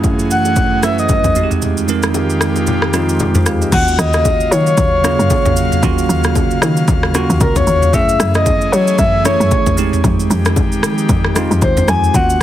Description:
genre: amapiano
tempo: 114 BPM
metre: 4/4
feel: swing 58% on 16ths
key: Eb dorian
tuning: A4 = 444 Hz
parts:
  - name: bell-like tine electric piano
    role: accompaniment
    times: 0.0-12.4 s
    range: F2 to F5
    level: -19 LUFS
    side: moving between right 1 dB and right 10 dB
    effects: auto-pan
  - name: airy breathy pad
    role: sustained chords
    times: 0.0-12.4 s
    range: Db3 to F5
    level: -21 LUFS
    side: left 1 dB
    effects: chorus, sidechain pumping
  - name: deep house drum kit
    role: drums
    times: 0.0-12.4 s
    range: crash cymbal, kick drum, rim click, shaker, toms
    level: -17 LUFS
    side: equal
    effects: none
  - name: bongos and congas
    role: percussion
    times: 0.0-12.3 s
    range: none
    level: -24 LUFS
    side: left 5 dB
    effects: none
  - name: breathy flute-like synth lead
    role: melody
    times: 0.3-12.4 s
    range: Bb4 to Ab5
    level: -16 LUFS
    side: left 1 dB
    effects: chorus, tape echo
  - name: woody log drum bass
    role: bass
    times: 3.7-12.4 s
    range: Db2 to Gb3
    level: -16 LUFS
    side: equal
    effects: none
room: little or no reverb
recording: heavily compressed radio sound, multiband compression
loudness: -11 LUFS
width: side -12 dB against mid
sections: 0.0-3.7 A section; 3.7-12.4 B section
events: kick muted 1.6-3.7; drop 3.7-12.4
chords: 0.0 Gbm9; 1.4 Fm9; 3.7 Ebm9; 7.9 Gbm9; 9.8 Fm9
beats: 0.04 0.56 1.09 | 1.62 2.14 2.67 3.20 | 3.72 4.25 4.78 5.30 | 5.83 6.35 6.88 7.41 | 7.93 8.46 8.99 9.51 | 10.04 10.56 11.09 11.62 | 12.14

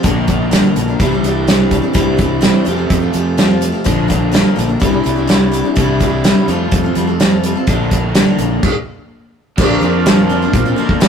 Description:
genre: folk rock and heartland rock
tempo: 126 BPM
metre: 4/4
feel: straight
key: unclear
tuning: A4 = 440 Hz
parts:
  - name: picked steel-string acoustic guitar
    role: accompaniment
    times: 0.0-11.1 s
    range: Bb2 to Bb4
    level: -18 LUFS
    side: left 3 dB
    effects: none
  - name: crunchy overdriven guitar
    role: riff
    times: 0.0-11.1 s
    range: F2 to F4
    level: -20 LUFS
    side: equal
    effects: none
  - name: fingered electric bass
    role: bass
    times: 0.0-10.7 s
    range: Bb1 to Bb2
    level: -20 LUFS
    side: right 1 dB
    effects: none
  - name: natural country drum kit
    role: drums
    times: 0.0-11.1 s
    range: crash cymbal, hi-hat, kick drum, snare drum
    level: -14 LUFS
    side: right 1 dB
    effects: none
  - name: bright upright piano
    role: accompaniment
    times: 9.6-11.1 s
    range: D4 to C5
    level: -24 LUFS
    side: right 1 dB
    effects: none
  - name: accordion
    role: sustained chords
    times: 9.6-11.1 s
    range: Bb4 to C6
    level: -22 LUFS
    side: right 2 dB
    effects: light tremolo tuning
room: light reverb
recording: rough rehearsal-room recording, tube saturation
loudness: -11 LUFS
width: side -7 dB against mid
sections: 0.0-9.6 A section; 9.6-11.1 B section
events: stop 8.6-9.6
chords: 0.0 Bb; 1.0 Cadd9; 2.7 Fadd9; 3.9 Bb; 4.8 Cadd9; 6.5 Fadd9; 7.7 Bb; 8.6 N.C.; 9.6 Bbadd9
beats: | 0.04 0.52 1.00 1.48 | 1.95 2.43 2.91 3.38 | 3.86 4.33 4.81 5.29 | 5.77 6.24 6.72 7.20 | 7.67 8.15 8.63 9.11 | 9.58 10.06 10.54 11.02

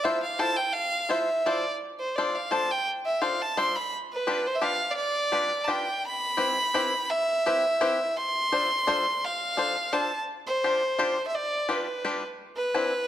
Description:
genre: musette waltz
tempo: 170 BPM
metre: 3/4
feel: straight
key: C major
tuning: A4 = 440 Hz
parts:
  - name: rich violin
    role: melody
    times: 0.0-13.1 s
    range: B4 to C6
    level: -26 LUFS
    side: right 1 dB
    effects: none
  - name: bluegrass banjo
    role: accompaniment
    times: 0.0-12.9 s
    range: C4 to C5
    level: -29 LUFS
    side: left 3 dB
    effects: none
room: moderate recital hall reverb, RT60 1.7 s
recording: none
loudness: -24 LUFS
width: side -11 dB against mid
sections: 0.0-13.1 A section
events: none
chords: 0.0 Fmaj7; 1.8 Dm7; 3.9 G7; 6.0 Cmaj7; 8.2 Dm7; 10.3 G7sus4; 11.3 G7; 12.4 Cmaj9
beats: 0.05 0.41 | 0.76 1.11 1.46 | 1.82 2.17 2.52 | 2.88 3.23 3.58 | 3.93 4.28 4.63 | 4.98 5.34 5.69 | 6.05 6.40 6.75 | 7.10 7.45 7.80 | 8.15 8.51 8.86 | 9.21 9.56 9.92 | 10.27 10.63 10.98 | 11.34 11.69 12.04 | 12.39 12.74

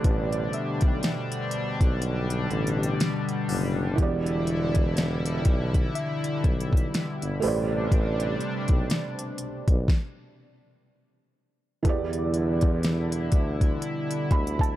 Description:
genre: contemporary R&B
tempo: 61 BPM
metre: 4/4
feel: swing 58% on 16ths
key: E minor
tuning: A4 = 440 Hz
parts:
  - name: felt-muted upright piano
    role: accompaniment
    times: 0.0-14.8 s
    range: E3 to B5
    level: -32 LUFS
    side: right 5 dB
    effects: none
  - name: chorused pulse-width pad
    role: sustained chords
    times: 0.0-14.8 s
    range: B2 to E4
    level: -30 LUFS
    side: left 2 dB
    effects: sidechain pumping
  - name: warm tuba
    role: bass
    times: 0.0-14.8 s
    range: E1 to E2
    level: -29 LUFS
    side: equal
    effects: none
  - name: smooth R&B drum kit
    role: drums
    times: 0.0-14.8 s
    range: hi-hat, kick drum, snare drum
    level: -24 LUFS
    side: equal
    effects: none
  - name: soft round pluck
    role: texture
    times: 0.5-14.4 s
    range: A4 to G5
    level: -41 LUFS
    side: left 4 dB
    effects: none
room: little or no reverb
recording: dark, warm production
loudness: -23 LUFS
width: side -14 dB against mid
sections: 0.0-11.8 A section; 11.8-14.8 A section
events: stop 9.9-11.8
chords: 0.0 Am11; 4.0 Em7; 7.4 Am11; 9.9 N.C.; 11.8 Em7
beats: | 0.05 1.03 2.01 3.00 | 3.98 4.96 5.95 6.93 | 7.92 8.90 9.88 10.87 | 11.85 12.83 13.82

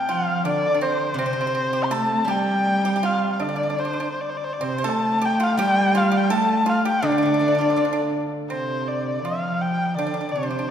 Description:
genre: chinese traditional, Chinese chamber ensemble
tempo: 82 BPM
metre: 2/4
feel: rubato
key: D yu mode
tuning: A4 = 442 Hz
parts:
  - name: dark erhu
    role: melody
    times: 0.0-10.7 s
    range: C5 to C6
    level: -22 LUFS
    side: left 2 dB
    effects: none
  - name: steel-string zither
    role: accompaniment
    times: 0.0-9.2 s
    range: C3 to A4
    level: -28 LUFS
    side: right 2 dB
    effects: none
  - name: pipa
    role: second line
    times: 0.1-10.7 s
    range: C4 to C5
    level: -29 LUFS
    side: right 2 dB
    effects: none
  - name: rich cello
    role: second line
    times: 0.1-10.7 s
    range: C3 to A3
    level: -25 LUFS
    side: right 1 dB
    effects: none
room: wet concert hall reverb, RT60 1.9 s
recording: recorded in a church or concert hall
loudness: -20 LUFS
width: side -9 dB against mid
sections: 0.0-8.5 A section; 8.5-10.7 B section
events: none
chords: none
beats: 0.44 | 1.16 1.90 | 2.65 3.39 | 4.13 4.85 | 5.58 6.30 | 7.03 7.76 | 8.50 9.24 | 9.97 10.71

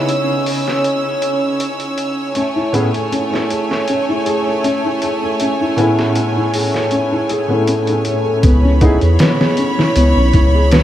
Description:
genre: trip hop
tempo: 79 BPM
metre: 4/4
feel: swing 53% on 16ths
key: C# minor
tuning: A4 = 440 Hz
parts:
  - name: warm upright piano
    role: accompaniment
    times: 0.0-9.0 s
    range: A2 to G#5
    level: -20 LUFS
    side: equal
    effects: tremolo, tape echo
  - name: clear studio violin section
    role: sustained chords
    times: 0.0-10.8 s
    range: A3 to E6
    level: -19 LUFS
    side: right 1 dB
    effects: none
  - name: trip hop sampler-style drum kit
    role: drums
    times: 0.1-10.8 s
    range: hi-hat, kick drum, snare drum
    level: -18 LUFS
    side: equal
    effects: high-pass filter on hats, high-pass filter on snare, high-pass filter on kick
  - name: felt-muted upright piano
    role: arpeggios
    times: 2.4-10.8 s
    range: B3 to B4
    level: -18 LUFS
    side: left 1 dB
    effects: tape echo
  - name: soft dub sub bass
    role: bass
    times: 8.4-10.8 s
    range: B1 to E2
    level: -12 LUFS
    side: equal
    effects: none
room: wet huge ambient reverb, RT60 8.1 s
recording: dreamy mix soaked in reverb, vinyl crackle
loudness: -13 LUFS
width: side -12 dB against mid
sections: 0.0-8.4 A section; 8.4-10.8 B section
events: none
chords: 0.0 C#m7; 2.4 Amaj7; 8.4 C#m7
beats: 0.09 0.85 1.61 | 2.37 3.12 3.88 4.64 | 5.40 6.16 6.92 7.68 | 8.44 9.20 9.96 10.72

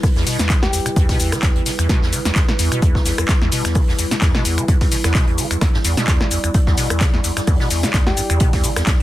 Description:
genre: acid house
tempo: 129 BPM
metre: 4/4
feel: swing 55% on 16ths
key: E minor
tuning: A4 = 440 Hz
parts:
  - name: dark analog pad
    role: sustained chords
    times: 0.0-9.0 s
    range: G3 to D5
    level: -26 LUFS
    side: equal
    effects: wide subtle chorus, sidechain pumping
  - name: liquid acid bass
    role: riff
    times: 0.0-9.0 s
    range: E2 to D3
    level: -21 LUFS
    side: equal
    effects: lush chorus, sidechain pumping
  - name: electronic kick drum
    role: drums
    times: 0.0-9.0 s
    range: none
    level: -17 LUFS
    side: equal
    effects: none
  - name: punchy analog drum machine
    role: drums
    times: 0.0-9.0 s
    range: finger snaps, handclaps, hi-hat, rim click, shaker, snare drum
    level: -22 LUFS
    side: left 1 dB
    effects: overdrive
  - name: vintage drum kit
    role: drums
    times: 0.0-9.0 s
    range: hi-hat, snare drum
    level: -32 LUFS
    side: right 2 dB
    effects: sidechain pumping on hats, high-pass filter on hats, high-pass filter on snare, high-pass filter on room
  - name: soft struck synth lead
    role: melody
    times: 0.6-1.3, 8.1-8.7 s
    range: G4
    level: -28 LUFS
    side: left 1 dB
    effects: chorus, vintage 12-bit sampler grit, dub echo
room: light reverb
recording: dense, heavily limited modern master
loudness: -15 LUFS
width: side -15 dB against mid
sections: 0.0-9.0 A section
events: none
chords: 0.0 Em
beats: | 0.03 0.50 0.96 1.43 | 1.89 2.36 2.82 3.29 | 3.75 4.22 4.68 5.15 | 5.62 6.08 6.54 7.01 | 7.47 7.94 8.41 8.87

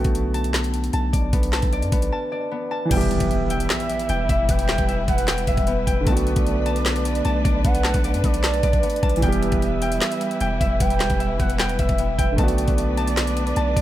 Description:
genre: hip hop, trap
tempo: 152 BPM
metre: 4/4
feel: half-time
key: E minor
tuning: A4 = 441 Hz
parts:
  - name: dark concert grand piano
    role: accompaniment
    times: 0.0-13.8 s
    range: D3 to G4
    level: -27 LUFS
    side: right 1 dB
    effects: none
  - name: concert harp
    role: arpeggios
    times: 0.0-13.8 s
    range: B3 to A5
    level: -27 LUFS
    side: left 3 dB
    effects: tape echo
  - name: long sustained 808-style bass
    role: bass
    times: 0.0-13.8 s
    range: E1 to F#2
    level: -24 LUFS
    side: equal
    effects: none
  - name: trap drum kit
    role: drums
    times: 0.0-13.8 s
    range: crash cymbal, handclaps, hi-hat, kick drum, snare drum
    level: -23 LUFS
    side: equal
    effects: none
  - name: gliding portamento lead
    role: second line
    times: 2.9-13.8 s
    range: D5 to G5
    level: -28 LUFS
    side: right 5 dB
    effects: chorus, tape echo
  - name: dark symphonic string section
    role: sustained chords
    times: 2.9-13.8 s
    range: G3 to B4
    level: -31 LUFS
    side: left 1 dB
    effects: none
  - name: impact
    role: sound effects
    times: 3.0-4.5 s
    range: none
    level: -31 LUFS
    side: equal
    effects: none
room: digital ambience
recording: none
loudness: -19 LUFS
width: side -13 dB against mid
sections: 0.0-2.9 A section; 2.9-13.8 B section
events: break 2.1-2.9; impact 2.9-4.5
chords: 0.0 Bm7; 2.9 Em; 6.1 Bm7; 9.2 Em; 12.4 Bm7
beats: 0.15 0.54 0.94 | 1.33 1.73 2.12 2.52 | 2.91 3.31 3.70 4.09 | 4.49 4.88 5.28 5.67 | 6.07 6.46 6.86 7.25 | 7.65 8.04 8.44 8.83 | 9.23 9.62 10.02 10.41 | 10.80 11.20 11.59 11.99 | 12.38 12.78 13.17 13.57

